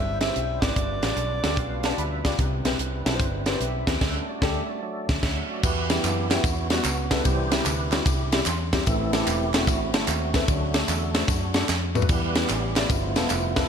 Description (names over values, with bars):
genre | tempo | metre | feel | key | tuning
uptempo gospel | 148 BPM | 4/4 | swing 66% on 8ths | unclear | A4 = 440 Hz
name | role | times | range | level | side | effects
clear alto saxophone | melody | 0.0-2.2 s | D5 to E5 | -30 LUFS | right 2 dB | digital delay
dark upright piano | accompaniment | 0.0-13.7 s | G2 to C6 | -30 LUFS | left 4 dB | analog chorus
tonewheel organ | sustained chords | 0.0-13.7 s | E3 to G5 | -30 LUFS | right 3 dB | slow rotary speaker, overdrive, chorus vibrato
vintage muted fingered electric bass | bass | 0.0-13.6 s | E1 to F#2 | -29 LUFS | equal | none
tight funk drum kit | drums | 0.2-13.6 s | crash cymbal, hi-hat, kick drum, ride cymbal, snare drum, toms | -25 LUFS | equal | gated reverb
tambourine and handclaps | percussion | 5.6-13.6 s | none | -33 LUFS | right 3 dB | none
room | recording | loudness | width
moderate lush hall reverb, RT60 1.5 s, small room ambience | bright 1980s-style digital production | -22 LUFS | side -7 dB against mid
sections
0.0-5.6 A section; 5.6-13.7 B section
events
upright piano fill 1.2-2.4, 8.3-8.9; tonewheel organ fill 1.2-2.4; band accent 4.0-5.6; tonewheel organ solo 5.6-13.7; drum fill 11.7-12.1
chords
0.0 C/G; 0.8 G7; 1.6 G7/B; 2.4 Cmaj7; 4.0 Dsus4; 4.8 D; 5.6 Em; 7.3 C; 8.9 Am; 10.5 D; 12.1 Em; 12.9 G13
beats
0.35 | 0.76 1.17 1.57 1.98 | 2.39 2.79 3.20 3.61 | 4.01 4.42 4.83 5.23 | 5.64 6.04 6.45 6.85 | 7.25 7.66 8.06 8.47 | 8.87 9.28 9.68 10.08 | 10.48 10.89 11.29 11.69 | 12.10 12.50 12.90 13.31